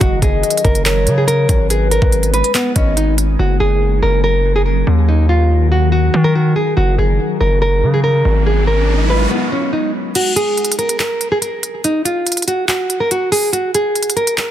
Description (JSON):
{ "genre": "hip hop, trap", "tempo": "142 BPM", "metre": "4/4", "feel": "half-time", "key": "F# major", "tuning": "A4 = 440 Hz", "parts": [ { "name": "nylon-string guitar", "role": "melody", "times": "0.0-14.5 s", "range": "B3 to B4", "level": "-17 LUFS", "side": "right 1 dB", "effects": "low-pass filter, tape echo" }, { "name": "hollow clarinet-like synth lead", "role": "second line", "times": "0.0-3.0 s", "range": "B4 to D#5", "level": "-22 LUFS", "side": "left 4 dB", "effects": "chorus, tape echo" }, { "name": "glassy FM pad", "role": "sustained chords", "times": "0.0-10.1 s", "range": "D#3 to A#4", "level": "-22 LUFS", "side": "left 1 dB", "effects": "ensemble chorus, built-in reverb" }, { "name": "distorted 808-style bass", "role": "bass", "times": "0.0-9.3 s", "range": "F#1 to D#3", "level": "-14 LUFS", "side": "equal", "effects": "distortion" }, { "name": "trap drum kit", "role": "drums", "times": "0.0-3.3, 10.2-14.5 s", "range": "crash cymbal, handclaps, hi-hat, kick drum", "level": "-17 LUFS", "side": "equal", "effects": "none" }, { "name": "riser", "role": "sound effects", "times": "7.8-9.3 s", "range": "none", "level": "-24 LUFS", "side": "right 2 dB", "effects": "none" } ], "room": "light reverb", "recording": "dense, heavily limited modern master", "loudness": "-12 LUFS", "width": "side -11 dB against mid", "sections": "0.0-3.4 A section; 3.4-10.2 B section; 10.2-14.5 C section", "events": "riser 7.8-10.2; break 9.3-10.2, 10.2-14.5", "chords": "0.0 F#add9; 1.7 G#m; 3.4 F#add9; 5.1 D#m; 6.8 F#add9; 8.5 G#m; 10.2 N.C.", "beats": "| 0.01 0.43 0.86 1.28 | 1.70 2.12 2.55 2.97 | 3.39 3.81 4.24 4.66 | 5.08 5.50 5.93 6.35 | 6.77 7.20 7.62 8.04 | 8.46 8.88 9.31 9.73 | 10.15 10.57 11.00 11.42 | 11.84 12.27 12.69 13.11 | 13.53 13.96 14.38" }